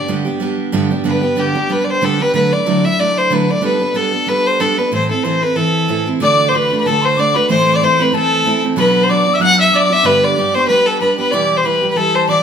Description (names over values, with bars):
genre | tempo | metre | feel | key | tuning
celtic folk, Celtic reel | 187 BPM | 4/4 | swing 55% on 8ths | unclear | A4 = 438 Hz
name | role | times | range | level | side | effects
rich fiddle | melody | 0.0-12.4 s | G4 to F#5 | -14 LUFS | equal | none
picked steel-string acoustic guitar | accompaniment | 0.0-12.4 s | E2 to A4 | -17 LUFS | right 2 dB | none
hollow mid whistle | second line | 6.2-12.4 s | A5 to F#6 | -18 LUFS | left 4 dB | none
room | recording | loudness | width
wet large studio reverb, RT60 0.9 s | band playing live in one room | -12 LUFS | side -7 dB against mid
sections
0.0-6.2 A section; 6.2-12.4 B section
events
none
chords
0.0 G; 2.4 Dadd9; 3.6 Gadd9; 4.9 Am; 6.2 D; 7.5 Am; 8.8 Bm; 10.1 G; 11.3 Em